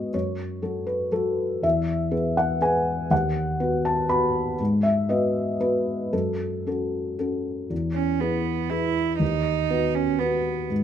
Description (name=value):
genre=neoclassical piano and strings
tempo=120 BPM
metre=3/4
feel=rubato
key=E major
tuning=A4 = 440 Hz
part: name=felt-muted upright piano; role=accompaniment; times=0.0-10.8 s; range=D#2 to B5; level=-23 LUFS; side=left 1 dB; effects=none
part: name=rich cello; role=second line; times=7.9-10.7 s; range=B3 to E4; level=-26 LUFS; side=right 14 dB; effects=none
room=light reverb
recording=minimal, uncompressed stereo recording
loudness=-22 LUFS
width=side -9 dB against mid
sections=0.0-7.7 A section; 7.7-10.8 A section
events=none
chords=0.1 F#m; 1.6 E; 3.1 B/D#; 4.6 G#m7; 6.1 F#m; 7.7 E; 9.2 B/D#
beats=| 0.13 0.63 1.12 | 1.64 2.13 2.62 | 3.11 3.60 4.10 | 4.59 5.09 5.60 | 6.12 6.66 7.18 | 7.71 8.21 8.71 | 9.21 9.71 10.20 | 10.71